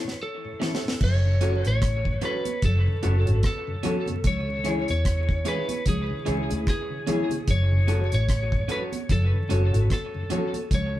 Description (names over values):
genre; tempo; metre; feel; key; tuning
roots reggae; 74 BPM; 4/4; swing 58% on 16ths; F# minor; A4 = 439 Hz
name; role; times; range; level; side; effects
lightly driven lead guitar; melody; 0.0-11.0 s; G#4 to C#5; -31 LUFS; equal; dub echo
electric guitar at the edge of break-up; accompaniment; 0.0-10.5 s; C#4 to C#5; -35 LUFS; right 2 dB; dub echo
mellow tonewheel organ; accompaniment; 0.0-11.0 s; F#2 to C#4; -34 LUFS; left 1 dB; slow rotary speaker, dub echo
deep reggae drum kit; drums; 0.1-10.9 s; crash cymbal, hi-hat, kick drum, rim click, snare drum; -27 LUFS; equal; none
warm upright piano; stabs; 0.6-10.5 s; C#4 to A4; -31 LUFS; left 3 dB; none
vintage muted fingered electric bass; bass; 1.0-11.0 s; F#1 to E2; -23 LUFS; equal; none
congas; percussion; 1.0-10.9 s; none; -32 LUFS; right 1 dB; none
room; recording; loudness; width
wet studio reverb, RT60 0.5 s; band playing live in one room, vinyl crackle; -22 LUFS; side -14 dB against mid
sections
0.0-1.0 A section; 1.0-11.0 B section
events
break 0.0-1.0; drum fill 0.0-1.0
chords
0.0 A; 1.0 F#m; 4.2 C#m; 7.5 F#m